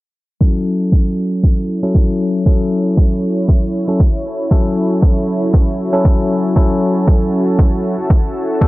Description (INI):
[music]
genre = deep house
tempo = 117 BPM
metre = 4/4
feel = swing 54% on 16ths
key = F# minor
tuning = A4 = 441 Hz
[part]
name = warm analog pad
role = sustained chords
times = 0.4-8.7 s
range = G3 to C#5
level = -23 LUFS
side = equal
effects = chorus, sidechain pumping
[part]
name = bell-like tine electric piano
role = stabs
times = 0.4-8.7 s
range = F#3 to A4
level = -17 LUFS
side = left 1 dB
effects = auto-pan, sidechain pumping, low-pass filter, analog delay
[part]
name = electronic kick drum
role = drums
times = 0.4-8.7 s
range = none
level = -12 LUFS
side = equal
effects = none
[part]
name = granular cloud pad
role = texture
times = 3.4-8.7 s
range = C#4 to A5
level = -29 LUFS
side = equal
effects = built-in reverb, sidechain pumping
[sound]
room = little or no reverb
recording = dry, gritty hardware recording, cassette tape, low-pass filter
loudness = -12 LUFS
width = side -19 dB against mid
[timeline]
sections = 0.4-8.7 A section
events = fade-in on ambient pad 0.4-8.7; filter sweep on tine electric piano 0.4-8.7; filter sweep 0.4-8.7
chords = 0.4 F#m7